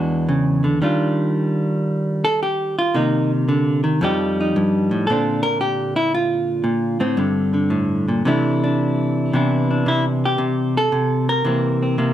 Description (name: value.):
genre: solo jazz.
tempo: 113 BPM.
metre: 4/4.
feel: swing 68% on 8ths, rubato.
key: unclear.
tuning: A4 = 436 Hz.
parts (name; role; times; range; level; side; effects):
vintage hollow-body jazz guitar; solo; 0.0-12.1 s; E2 to Bb4; -17 LUFS; equal; none.
room: light reverb.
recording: close, detailed microphones.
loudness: -17 LUFS.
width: side -11 dB against mid.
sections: 0.0-9.3 A section; 9.3-12.1 B section.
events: hollow-body jazz guitar solo 0.0-9.3.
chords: 0.0 E9; 0.8 Ebmaj9; 2.9 Cm7; 4.0 F9; 5.1 Bbmaj9; 7.2 Gmadd9; 8.2 C69; 9.3 Cmaj9; 11.5 C7.